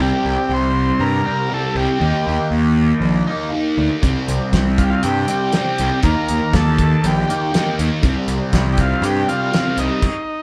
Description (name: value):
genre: psychedelic rock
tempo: 120 BPM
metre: 4/4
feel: straight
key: unclear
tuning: A4 = 440 Hz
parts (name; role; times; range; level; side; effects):
- combo organ; melody; 0.0-10.4 s; Eb4 to C5; -24 LUFS; equal; none
- fuzz guitar; riff; 0.0-10.0 s; C3 to Eb4; -22 LUFS; equal; distortion, phaser
- fuzz picked electric bass; bass; 0.0-9.9 s; Bb1 to G2; -22 LUFS; equal; overdrive
- cloth-damped thuddy drum kit; drums; 4.0-10.1 s; crash cymbal, hi-hat, kick drum, snare drum; -22 LUFS; equal; none
room: moderate studio reverb, RT60 0.8 s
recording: band playing live in one room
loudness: -18 LUFS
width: mono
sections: 0.0-10.4 A section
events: stop 10.0-10.4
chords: 0.0 C5; 2.0 Eb; 4.0 C5; 6.0 Eb; 8.0 C5